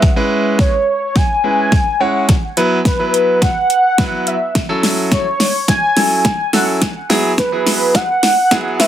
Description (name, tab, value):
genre	dance-pop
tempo	106 BPM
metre	4/4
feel	straight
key	unclear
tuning	A4 = 440 Hz
part	warm velvety synth lead	melody	0.0-8.9 s	B4 to G#5	-16 LUFS	equal	chorus, tape echo, plate reverb
part	clear concert grand piano	accompaniment	0.0-8.9 s	F#3 to C#5	-17 LUFS	right 1 dB	sidechain pumping, plate reverb
part	pop drum kit	drums	0.0-8.9 s	hi-hat, kick drum, snare drum	-15 LUFS	equal	overdrive
room	moderate studio ambience, RT60 0.5 s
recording	dense, heavily limited modern master, high-pass filter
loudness	-12 LUFS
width	side -11 dB against mid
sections	0.0-8.9 A section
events	build-up 0.0-8.9; drum fill 0.0-8.9; filter sweep 0.0-8.9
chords	0.0 C#m7; 2.3 Bsus4; 4.6 A6; 6.8 Eadd9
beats	| 0.03 0.59 1.16 1.72 | 2.29 2.85 3.42 3.99 | 4.55 5.12 5.68 6.25 | 6.82 7.38 7.95 8.52